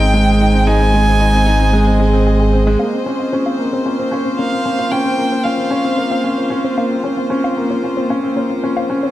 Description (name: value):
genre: piano and strings electronica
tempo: 113 BPM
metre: 4/4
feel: straight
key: Bb dorian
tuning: A4 = 440 Hz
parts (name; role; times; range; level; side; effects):
- rich violin; melody; 0.0-6.8 s; F5 to Ab5; -19 LUFS; right 1 dB; digital delay
- rich chamber string section; sustained chords; 0.0-9.1 s; Ab3 to Eb5; -21 LUFS; right 1 dB; none
- warm grand piano; riff; 0.0-9.1 s; Ab3 to Ab4; -17 LUFS; equal; low-pass filter, digital delay
- warm sub bass; bass; 0.0-2.8 s; Ab1; -14 LUFS; equal; none
- warbly dusty pluck; arpeggios; 2.8-9.1 s; C5 to F5; -27 LUFS; left 2 dB; chorus, digital delay
room: moderate echo chamber reverb, RT60 1.7 s, studio reverb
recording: dark, warm production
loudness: -13 LUFS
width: side -14 dB against mid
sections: 0.0-2.8 A section; 2.8-9.1 B section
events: filter sweep on synth arpeggio sound 2.8-9.1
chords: 0.0 Ab; 2.8 Bbmadd9